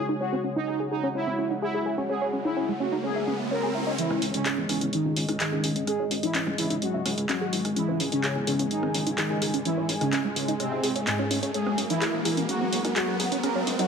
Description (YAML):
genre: melodic techno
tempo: 127 BPM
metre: 4/4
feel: straight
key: C# minor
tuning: A4 = 440 Hz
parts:
  - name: analog synth brass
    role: melody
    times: 0.0-13.9 s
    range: G#2 to A#4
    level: -28 LUFS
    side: equal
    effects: chorus, tape echo
  - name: dark analog pad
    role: sustained chords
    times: 0.0-13.9 s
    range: G#3 to G#5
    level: -35 LUFS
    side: left 1 dB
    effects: chorus
  - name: tight sequenced synth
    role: arpeggios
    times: 0.0-13.8 s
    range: G#3 to E5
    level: -31 LUFS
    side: equal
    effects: chorus, cassette tape, digital delay
  - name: analog drone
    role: drone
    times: 0.0-13.9 s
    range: C#3 to G#3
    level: -36 LUFS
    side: equal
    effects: chorus
  - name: riser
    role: sound effects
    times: 1.6-13.9 s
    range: none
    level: -35 LUFS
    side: right 1 dB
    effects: none
  - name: techno drum kit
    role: drums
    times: 4.0-13.9 s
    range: handclaps, hi-hat, rim click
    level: -30 LUFS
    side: equal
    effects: none
  - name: fat analog bass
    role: bass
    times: 4.1-13.9 s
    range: F#1 to F#2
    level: -34 LUFS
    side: equal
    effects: high-pass filter
room: light reverb, digital ambience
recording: none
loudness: -24 LUFS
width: side -6 dB against mid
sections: 0.0-4.0 A section; 4.0-13.9 B section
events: filter sweep on synth arpeggio sound 0.0-4.0; riser 1.6-4.0, 4.0-13.9; build-up 4.0-13.9; filter sweep on analog polysynth 4.0-13.9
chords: 0.0 F#sus2; 4.0 C#m; 11.5 F#add9